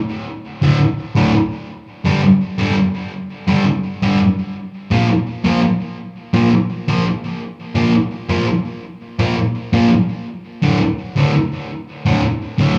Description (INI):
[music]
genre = rock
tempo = 168 BPM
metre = 4/4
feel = straight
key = unclear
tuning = A4 = 440 Hz
[part]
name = thick fuzz guitar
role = solo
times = 0.6-12.7 s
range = D2 to Bb3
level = -17 LUFS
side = equal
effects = distortion, slapback echo, tape echo
[sound]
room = wet club reverb, RT60 0.6 s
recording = live gig heard through the venue's PA, club reverb, small room ambience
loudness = -17 LUFS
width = mono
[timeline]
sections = 0.0-12.8 A section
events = none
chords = 0.0 D5; 2.1 G5; 4.9 Bb5; 10.6 D5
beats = 0.28 | 0.64 0.99 1.35 1.71 | 2.06 2.42 2.78 3.13 | 3.49 3.85 4.20 4.56 | 4.92 5.27 5.63 5.99 | 6.34 6.70 7.05 7.41 | 7.77 8.13 8.48 8.84 | 9.20 9.55 9.91 10.27 | 10.63 10.98 11.34 11.70 | 12.06 12.42